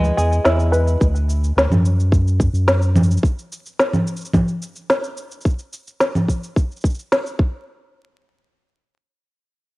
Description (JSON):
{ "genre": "folktronica", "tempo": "108 BPM", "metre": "4/4", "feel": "straight", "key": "unclear", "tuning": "A4 = 440 Hz", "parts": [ { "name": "bluegrass banjo", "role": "arpeggios", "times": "0.0-1.1 s", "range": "G#3 to B4", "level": "-21 LUFS", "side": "equal", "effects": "low-pass filter, cassette tape, tape echo" }, { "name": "warm sub bass", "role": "bass", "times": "0.0-3.2 s", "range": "D2 to F#2", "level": "-17 LUFS", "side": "equal", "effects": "tube saturation" }, { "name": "electronic shaker, snare drum and congas", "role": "drums", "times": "0.0-7.4 s", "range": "none", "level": "-18 LUFS", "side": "equal", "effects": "overdrive, cassette tape" }, { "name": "electronic kick drum", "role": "drums", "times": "1.0-7.5 s", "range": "none", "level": "-17 LUFS", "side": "equal", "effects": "overdrive, cassette tape" } ], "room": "light reverb, digital ambience", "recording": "home recording on cassette, vinyl crackle", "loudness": "-16 LUFS", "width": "side -21 dB against mid", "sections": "0.0-7.7 A section; 7.7-9.8 B section", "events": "filter sweep on five-string banjo 0.0-1.0", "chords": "0.0 E; 1.0 D; 3.2 N.C." }